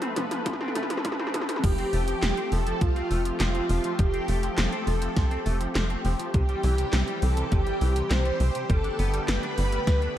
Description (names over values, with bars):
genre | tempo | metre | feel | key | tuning
synthwave | 102 BPM | 4/4 | straight | unclear | A4 = 439 Hz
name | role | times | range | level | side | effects
lush unison pad | sustained chords | 0.0-10.2 s | D3 to B4 | -33 LUFS | equal | chorus, sidechain pumping
semi-hollow electric guitar | riff | 0.0-10.1 s | C3 to D4 | -37 LUFS | left 2 dB | ensemble chorus, digital delay
80s electronic pad drums | drums | 0.0-10.1 s | crash cymbal, handclaps, hi-hat, snare drum, toms | -31 LUFS | equal | gated reverb on snare and toms, overdrive
tight sequencer bass | bass | 0.2-10.1 s | F1 to D2 | -26 LUFS | equal | tube saturation
electronic kick drum | drums | 0.5-10.0 s | none | -24 LUFS | equal | none
warm velvety synth lead | melody | 1.6-10.2 s | F4 to C5 | -32 LUFS | right 1 dB | chorus, digital delay
string machine, violins | second line | 1.6-10.2 s | F4 to C5 | -35 LUFS | equal | ensemble chorus, digital delay
room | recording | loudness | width
light reverb, digital ambience | dark, warm production, high-pass filter | -23 LUFS | side -12 dB against mid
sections
0.0-1.6 A section; 1.6-10.2 B section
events
drum fill 0.0-1.6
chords
0.0 F; 1.6 Fadd9; 6.3 C; 8.7 Gadd9